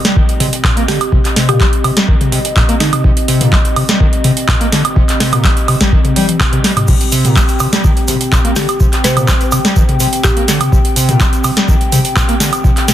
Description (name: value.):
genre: acid house.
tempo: 125 BPM.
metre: 4/4.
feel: straight.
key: C minor.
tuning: A4 = 438 Hz.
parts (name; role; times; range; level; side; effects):
dark analog pad; sustained chords; 0.0-12.9 s; C4 to G5; -21 LUFS; equal; wide subtle chorus, sidechain pumping.
overdriven acid bass; riff; 0.0-12.9 s; Bb2 to C4; -17 LUFS; equal; lush chorus, ping-pong delay.
booming analog drum machine; drums; 0.0-12.9 s; crash cymbal, handclaps, hi-hat, snare drum, toms, woodblock; -15 LUFS; right 1 dB; overdrive.
electronic kick drum; drums; 0.2-12.7 s; none; -13 LUFS; equal; none.
mallet-like synth pluck; melody; 0.9-3.5, 8.6-10.9 s; Eb4 to C5; -22 LUFS; equal; chorus, ping-pong delay.
egg shaker; percussion; 6.9-12.9 s; none; -24 LUFS; equal; none.
room: light reverb, digital ambience.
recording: dense, heavily limited modern master.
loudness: -10 LUFS.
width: side -12 dB against mid.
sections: 0.0-12.9 A section.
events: drum fill 6.2-6.9.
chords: 0.0 C5.